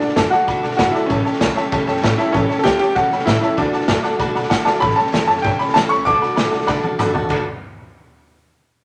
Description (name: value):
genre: rockabilly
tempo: 194 BPM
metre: 4/4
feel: straight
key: D major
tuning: A4 = 440 Hz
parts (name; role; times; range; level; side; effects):
- clear upright piano; melody; 0.0-6.9 s; C#4 to D6; -20 LUFS; equal; none
- picked steel-string acoustic guitar; accompaniment; 0.0-7.4 s; A2 to A4; -25 LUFS; equal; none
- tack piano; accompaniment; 0.0-7.4 s; C#5 to B5; -27 LUFS; equal; none
- upright bass; bass; 0.0-7.4 s; G1 to D3; -28 LUFS; equal; none
- raw garage drum kit; drums; 0.0-7.4 s; crash cymbal, hi-hat, kick drum, snare drum, toms; -23 LUFS; equal; none
room: moderate club reverb, RT60 0.5 s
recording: none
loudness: -17 LUFS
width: mono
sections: 0.0-4.8 A section; 4.8-7.3 B section; 7.3-8.5 C section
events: honky-tonk piano fill 4.4-4.8; drum fill 4.7, 6.7-7.3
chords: 0.0 D; 1.1 A7; 3.6 D; 4.8 A7; 6.1 D